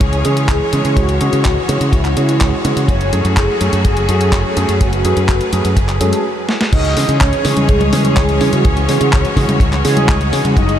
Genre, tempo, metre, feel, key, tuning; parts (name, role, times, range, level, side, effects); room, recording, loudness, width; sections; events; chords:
italo disco; 125 BPM; 4/4; straight; C# minor; A4 = 440 Hz
mellow synth brass; melody; 0.0-10.8 s; F#3 to D#5; -20 LUFS; equal; chorus, vintage 12-bit sampler grit, diffuse ambient delay
bright studio string section; sustained chords; 0.0-10.8 s; E3 to C#5; -21 LUFS; left 1 dB
fingered electric bass with an envelope filter; bass; 0.0-10.8 s; F#1 to C#3; -16 LUFS; equal
clean 12-bit digital drum machine; drums; 0.0-10.8 s; congas, crash cymbal, handclaps, hi-hat, snare drum; -21 LUFS; left 1 dB; overdrive, studio reverb
kick drum; drums; 0.0-10.7 s; -15 LUFS; equal; studio reverb
warm concert grand piano; stabs; 0.2-10.6 s; E3 to G#4; -21 LUFS; right 4 dB; diffuse ambient delay
moderate huge ambient reverb, RT60 7.7 s; dreamy mix soaked in reverb; -12 LUFS; side -10 dB against mid
0.0-6.7 A section; 6.7-10.8 B section
stop 6.2-6.7; drum fill 6.5
0.0 C#m; 2.9 F#madd9; 6.7 C#m